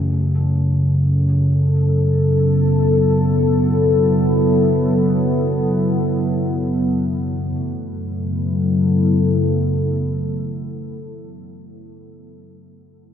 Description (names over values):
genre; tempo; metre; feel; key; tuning
dark ambient drone; free time; none; none; F# minor; A4 = 443 Hz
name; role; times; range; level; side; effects
deep dark ambient pad; sustained chords; 1.7-11.4 s; F#3 to A4; -19 LUFS; left 1 dB; chorus, built-in reverb
gamelan-type bronze metallophone; arpeggios; 0.0-10.9 s; C#3 to A3; -32 LUFS; right 2 dB; diffuse ambient delay
deep rumbling drone; drone; 0.0-10.9 s; F#2 to C#3; -19 LUFS; equal; built-in reverb
room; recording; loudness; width
wet huge ambient reverb, RT60 7.4 s; dark, warm production; -15 LUFS; side -9 dB against mid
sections
0.0-7.6 A section; 7.6-11.3 B section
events
fade-out on bronze metallophone 0.0-7.6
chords
0.0 F#m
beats
free time